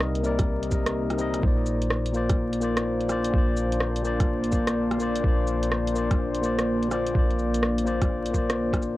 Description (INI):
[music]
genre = future garage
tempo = 126 BPM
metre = 4/4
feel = swing 64% on 16ths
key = unclear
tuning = A4 = 440 Hz
[part]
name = barky tine electric piano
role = accompaniment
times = 0.0-9.0 s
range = Bb2 to Eb5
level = -26 LUFS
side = left 2 dB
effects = sidechain pumping, cassette tape, analog delay, plate reverb
[part]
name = deep dark ambient pad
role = sustained chords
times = 0.0-9.0 s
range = Bb3 to C5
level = -30 LUFS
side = right 1 dB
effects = chorus, built-in reverb, sidechain pumping, cassette tape, plate reverb
[part]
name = soft 808-style bass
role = bass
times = 0.0-9.0 s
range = Bb1 to C2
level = -31 LUFS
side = equal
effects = sidechain pumping
[part]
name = garage drum kit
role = drums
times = 0.0-8.9 s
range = cabasa, hi-hat, rim click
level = -30 LUFS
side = right 1 dB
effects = none
[part]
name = electronic kick drum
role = drums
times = 0.4-8.8 s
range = none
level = -25 LUFS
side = equal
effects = overdrive
[sound]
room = light reverb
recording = home recording on cassette, vinyl crackle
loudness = -22 LUFS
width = side -17 dB against mid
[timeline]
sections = 0.0-9.0 A section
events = none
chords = 0.0 Cm7; 1.4 Bbadd9